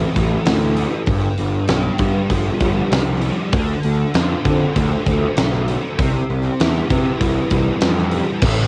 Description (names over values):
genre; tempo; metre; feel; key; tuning
rock, shoegaze and dream pop; 98 BPM; 4/4; straight; unclear; A4 = 440 Hz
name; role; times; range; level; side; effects
fuzz guitar; riff; 0.0-8.7 s; G2 to G4; -23 LUFS; equal; distortion, ensemble chorus
fuzz picked electric bass; bass; 0.0-8.7 s; G1 to D3; -22 LUFS; equal; overdrive
huge arena drum kit; drums; 0.2-8.6 s; crash cymbal, hi-hat, kick drum, snare drum; -23 LUFS; equal; cassette tape
room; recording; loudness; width
little or no reverb; home recording on cassette; -18 LUFS; mono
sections
0.0-8.4 A section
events
none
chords
0.0 Am7; 1.1 G7; 3.5 Dm7; 6.0 Cmaj7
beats
0.47 | 1.08 1.70 2.31 2.92 | 3.53 4.15 4.76 5.37 | 5.99 6.60 7.21 7.82 | 8.44